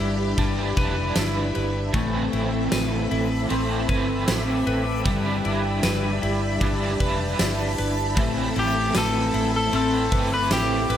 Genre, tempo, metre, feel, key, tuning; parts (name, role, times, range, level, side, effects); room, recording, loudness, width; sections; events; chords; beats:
dream pop; 77 BPM; 4/4; straight; A minor; A4 = 442 Hz
crunchy overdriven guitar; accompaniment; 0.0-11.0 s; A2 to B4; -29 LUFS; right 3 dB; tremolo, analog chorus, shimmer reverb
string machine, violas; sustained chords; 0.0-11.0 s; C4 to B5; -28 LUFS; right 1 dB; ensemble chorus, shimmer reverb
clean electric guitar; arpeggios; 0.0-11.0 s; G3 to B4; -28 LUFS; left 5 dB; wide subtle chorus, tape echo, shimmer reverb
vintage muted fingered electric bass; bass; 0.0-11.0 s; F1 to A1; -27 LUFS; equal
huge arena drum kit; drums; 0.4-11.0 s; kick drum, ride cymbal, snare drum, tambourine; -28 LUFS; equal
backwards swelling texture; texture; 3.3-11.0 s; G5 to D6; -36 LUFS; right 2 dB; built-in reverb, tape echo, shimmer reverb
electric guitar at the edge of break-up; melody; 8.6-11.0 s; G4 to B4; -25 LUFS; left 1 dB; shimmer reverb
moderate lush hall reverb, RT60 2.2 s; -20 LUFS; side -10 dB against mid
0.0-11.0 A section
0.0 G6; 1.9 Amadd9; 5.1 G6; 8.2 Amadd9
0.38 1.16 | 1.94 2.72 3.50 4.28 | 5.06 5.83 6.62 7.39 | 8.17 8.95 9.73 10.51